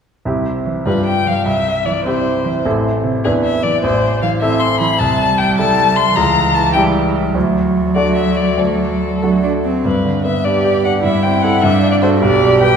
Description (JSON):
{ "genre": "quick classical-period movement for piano trio", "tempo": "101 BPM (dotted quarters)", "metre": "6/8", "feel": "rubato", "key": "C major, G major from 5.0 s", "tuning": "A4 = 438 Hz", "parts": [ { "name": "clear grand piano", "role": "accompaniment", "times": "0.3-12.8 s", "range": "A1 to B4", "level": "-16 LUFS", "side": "right 1 dB", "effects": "none" }, { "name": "warm cello", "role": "second line", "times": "0.7-12.8 s", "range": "C3 to G4", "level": "-19 LUFS", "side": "right 3 dB", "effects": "none" }, { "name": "warm violin", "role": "melody", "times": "0.9-12.8 s", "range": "Ab4 to C6", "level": "-17 LUFS", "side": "left 5 dB", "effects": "none" } ], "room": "wet concert hall reverb, RT60 2.4 s", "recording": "recorded in a church or concert hall", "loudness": "-13 LUFS", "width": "side -7 dB against mid", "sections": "0.3-9.8 A section; 9.8-12.8 B section", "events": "none", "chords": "0.3 C; 0.9 G5; 1.5 C; 2.6 Am; 3.2 E5; 3.8 Am; 5.0 Am7/C; 6.2 C#dim7; 7.3 D; 9.8 G; 11.0 Am/G; 11.6 D/G; 12.2 G/B", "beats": "| 0.26 0.86 | 1.46 2.06 | 2.65 3.25 | 3.83 4.41 | 5.00 5.58 | 6.17 6.75 | 7.35 7.96 | 8.59 9.22 | 9.85 10.45 | 11.05 11.63 | 12.22" }